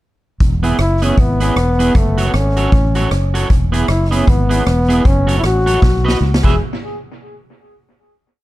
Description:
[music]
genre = ska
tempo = 155 BPM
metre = 4/4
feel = swing 60% on 8ths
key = E major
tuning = A4 = 440 Hz
[part]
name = fingered electric bass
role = bass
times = 0.4-6.6 s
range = E1 to C#2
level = -16 LUFS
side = equal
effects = none
[part]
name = street-band drum kit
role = drums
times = 0.4-6.5 s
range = crash cymbal, hi-hat, kick drum, rim click, snare drum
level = -17 LUFS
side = equal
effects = tape echo
[part]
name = electric guitar at the edge of break-up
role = accompaniment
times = 0.6-6.5 s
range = B3 to E5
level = -20 LUFS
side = right 3 dB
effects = none
[part]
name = bright trombone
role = melody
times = 0.8-6.6 s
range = A3 to G#4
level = -19 LUFS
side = left 1 dB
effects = tape echo
[sound]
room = small room ambience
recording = dark, warm production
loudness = -12 LUFS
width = side -16 dB against mid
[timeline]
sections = 0.4-6.6 head; 6.6-8.1 final hit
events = drum fill 5.8-6.6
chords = 0.4 E; 2.0 F#m; 3.5 E; 5.0 F#m; 5.8 B; 6.4 E; 6.6 N.C.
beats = | 0.40 0.79 1.18 1.56 | 1.95 2.34 2.73 3.11 | 3.50 3.89 4.27 4.66 | 5.05 5.43 5.82 6.21

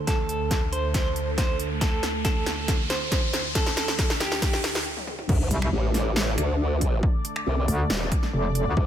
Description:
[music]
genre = heavy wobble dubstep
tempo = 138 BPM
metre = 4/4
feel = half-time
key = unclear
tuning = A4 = 440 Hz
[part]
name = lush unison pad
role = sustained chords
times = 0.0-8.9 s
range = D2 to D5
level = -32 LUFS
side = right 1 dB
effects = chorus, phaser, sidechain pumping
[part]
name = riser and impact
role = sound effects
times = 0.0-7.0 s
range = none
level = -33 LUFS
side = equal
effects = none
[part]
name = clean electric guitar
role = melody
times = 0.1-4.8 s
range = G4 to C5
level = -30 LUFS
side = right 2 dB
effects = tremolo, tape echo
[part]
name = big-room dance drum kit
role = drums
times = 0.1-8.6 s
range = crash cymbal, finger snaps, hi-hat, snare drum, toms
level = -29 LUFS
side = equal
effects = high-pass filter on hats, high-pass filter on snare, high-pass filter on toms, high-pass filter on cymbals, high-pass filter on room
[part]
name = electronic kick drum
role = drums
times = 0.1-8.9 s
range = none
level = -24 LUFS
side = equal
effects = none
[part]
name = formant-sweep wobble bass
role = bass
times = 5.3-8.9 s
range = Eb1 to D2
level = -24 LUFS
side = equal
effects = chorus, overdrive
[part]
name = metallic wobble bass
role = bass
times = 5.5-8.8 s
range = F1 to D2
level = -23 LUFS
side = equal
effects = chorus, overdrive
[sound]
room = light reverb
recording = none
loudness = -22 LUFS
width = side -10 dB against mid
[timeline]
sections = 0.0-5.3 A section; 5.3-8.9 B section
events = build-up 0.0-5.3; drum fill 0.0-4.9, 5.0-5.3; riser 0.0-4.9; stop 4.9-5.3; drop 5.3-8.9; impact 5.3-7.0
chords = 0.0 D5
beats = | 0.07 0.51 0.94 1.38 | 1.81 2.25 2.68 3.12 | 3.55 3.99 4.42 4.86 | 5.29 5.73 6.16 6.59 | 7.03 7.46 7.90 8.34 | 8.77

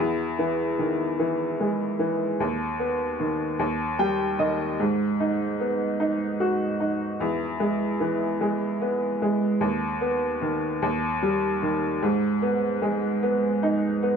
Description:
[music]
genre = pop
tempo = 50 BPM (dotted quarters)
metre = 6/8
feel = straight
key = G# minor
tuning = A4 = 439 Hz
[part]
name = bright upright piano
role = solo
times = 0.0-14.2 s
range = D#2 to G5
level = -23 LUFS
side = equal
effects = none
[sound]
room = moderate studio reverb, RT60 0.9 s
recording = band playing live in one room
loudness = -23 LUFS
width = side -6 dB against mid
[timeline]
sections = 0.0-14.2 A section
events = upright piano fill 3.6-4.8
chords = 0.0 Emaj7; 2.4 B/D#; 3.6 D#; 4.8 G#m7; 7.2 E; 9.6 B/D#; 10.8 D#; 12.0 G#m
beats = 1.19 | 2.40 3.60 | 4.80 6.01 | 7.21 8.42 | 9.62 10.82 | 12.03 13.23

